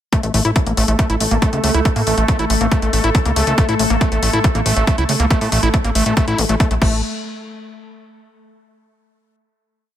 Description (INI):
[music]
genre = psychedelic trance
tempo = 139 BPM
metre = 4/4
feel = straight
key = A major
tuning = A4 = 440 Hz
[part]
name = evolving wavetable pad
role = sustained chords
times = 0.4-6.8 s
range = A3 to A4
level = -23 LUFS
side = left 1 dB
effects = chorus, built-in reverb, sidechain pumping
[part]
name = overdriven acid bass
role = riff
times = 0.1-7.0 s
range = G3 to E4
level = -21 LUFS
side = moving between left 5 dB and right 5 dB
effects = distortion, auto-pan, sidechain pumping, dub echo
[part]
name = drum and bass drum kit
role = drums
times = 0.1-6.9 s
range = crash cymbal, hi-hat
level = -24 LUFS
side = left 3 dB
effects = none
[part]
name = electronic kick drum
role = drums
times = 0.1-6.9 s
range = none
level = -16 LUFS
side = equal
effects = none
[part]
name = plucky analog bass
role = bass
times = 0.2-7.0 s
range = A1 to A2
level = -18 LUFS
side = equal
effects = none
[sound]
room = light reverb, digital ambience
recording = none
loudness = -14 LUFS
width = side -11 dB against mid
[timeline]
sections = 0.1-7.0 groove; 7.0-8.8 final hit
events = filter sweep on acid bass 0.1-7.0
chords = 0.1 A5; 6.8 N.C.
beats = | 0.13 0.56 0.99 1.42 | 1.85 2.28 2.72 3.15 | 3.58 4.01 4.44 4.87 | 5.31 5.74 6.17 6.60